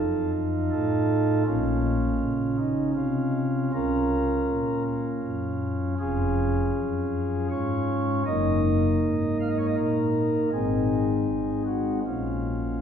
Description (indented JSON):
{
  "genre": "classical, chorale-style piece for pipe organ",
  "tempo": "80 BPM",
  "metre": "3/4",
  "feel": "straight",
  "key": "Bb minor, Db major from 6.0 s",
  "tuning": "A4 = 439 Hz",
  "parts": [
    { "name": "pipe organ, flutes", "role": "solo", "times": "0.0-12.8 s", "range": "F1 to F5", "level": "-23 LUFS", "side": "equal", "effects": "none" }
  ],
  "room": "wet church reverb, RT60 3.2 s",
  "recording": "heard from further back in the room",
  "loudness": "-23 LUFS",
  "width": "side -8 dB against mid",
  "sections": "0.0-12.8 A section",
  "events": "none",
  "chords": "0.0 F7; 1.5 Bbm; 3.7 Bbm/Db; 6.0 Db/F; 8.3 Ebm/Gb; 10.5 Ab; 12.0 Bbm"
}